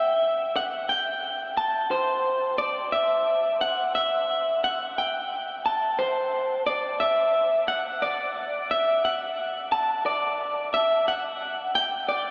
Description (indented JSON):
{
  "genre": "rock",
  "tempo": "59 BPM (dotted quarters)",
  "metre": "6/8",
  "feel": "straight",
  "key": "unclear",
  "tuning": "A4 = 440 Hz",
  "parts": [
    { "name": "electric guitar through a small old amp", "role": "melody", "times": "0.0-12.3 s", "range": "C5 to A5", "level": "-25 LUFS", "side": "equal", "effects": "spring reverb, diffuse ambient delay" }
  ],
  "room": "wet huge ambient reverb, RT60 7.8 s",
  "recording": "dreamy mix soaked in reverb",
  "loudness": "-25 LUFS",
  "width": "mono",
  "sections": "0.0-12.3 A section",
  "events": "build-up 0.0-12.3",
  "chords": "none"
}